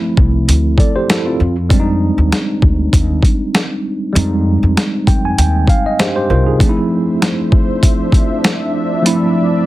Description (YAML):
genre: hip hop, boom-bap hip-hop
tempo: 98 BPM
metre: 4/4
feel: swing 55% on 16ths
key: D minor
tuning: A4 = 440 Hz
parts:
  - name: tine electric piano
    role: accompaniment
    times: 0.0-9.7 s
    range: F3 to Ab5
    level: -16 LUFS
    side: right 1 dB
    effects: overdrive, fast stereo tremolo, cassette tape, high-pass filter, low-pass filter, plate reverb
  - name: upright bass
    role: bass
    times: 0.2-6.6 s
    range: C2 to F2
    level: -14 LUFS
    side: equal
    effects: none
  - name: boom bap sampler-style drum kit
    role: drums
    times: 0.2-9.2 s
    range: hi-hat, kick drum, snare drum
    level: -13 LUFS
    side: equal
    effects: overdrive
  - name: warm analog pad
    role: sustained chords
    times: 6.6-9.7 s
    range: F3 to E5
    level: -20 LUFS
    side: left 1 dB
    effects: chorus, high-pass filter, low-pass filter, plate reverb
room: light reverb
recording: heavily compressed radio sound, multiband compression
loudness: -11 LUFS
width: side -16 dB against mid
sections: 0.0-9.7 A section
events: none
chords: 0.0 Dm9; 1.4 Fm9; 6.6 Dm9